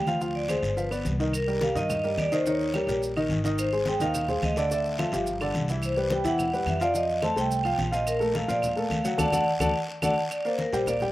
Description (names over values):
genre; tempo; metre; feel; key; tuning
Afro-Cuban jazz; 214 BPM; 4/4; straight; G minor; A4 = 440 Hz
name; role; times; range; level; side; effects
vibraphone with medium hard mallets; melody; 0.0-11.1 s; Bb4 to A5; -27 LUFS; right 1 dB; slapback echo
warm baby grand piano; accompaniment; 0.0-11.1 s; D3 to G5; -28 LUFS; left 1 dB; none
upright bass; bass; 0.0-11.1 s; G1 to Bb2; -32 LUFS; equal; none
congas; percussion; 0.1-11.1 s; none; -34 LUFS; left 1 dB; none
guiro; percussion; 0.1-11.1 s; none; -41 LUFS; left 2 dB; none
maracas; percussion; 0.1-11.1 s; none; -42 LUFS; right 3 dB; none
claves; percussion; 0.5-11.0 s; none; -39 LUFS; right 3 dB; none
room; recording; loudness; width
little or no reverb; recorded outdoors, with no room sound; -24 LUFS; side -16 dB against mid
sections
0.0-1.3 A section; 1.3-10.3 B section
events
band accent 9.2-10.3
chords
0.2 Dm7b5; 0.8 G7; 1.3 Cm7; 2.5 Eb7; 3.6 Ab6; 4.7 Dm; 5.3 G5; 5.8 Cmaj7; 6.9 F7; 8.1 Bbmaj7; 9.2 D; 10.3 Gm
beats
| 0.21 0.49 0.77 1.05 | 1.34 1.62 1.90 2.18 | 2.46 2.74 3.02 3.30 | 3.58 3.86 4.14 4.42 | 4.71 4.99 5.27 5.55 | 5.83 6.11 6.39 6.67 | 6.95 7.23 7.51 7.79 | 8.07 8.35 8.63 8.91 | 9.19 9.47 9.75 10.03 | 10.31 10.59 10.87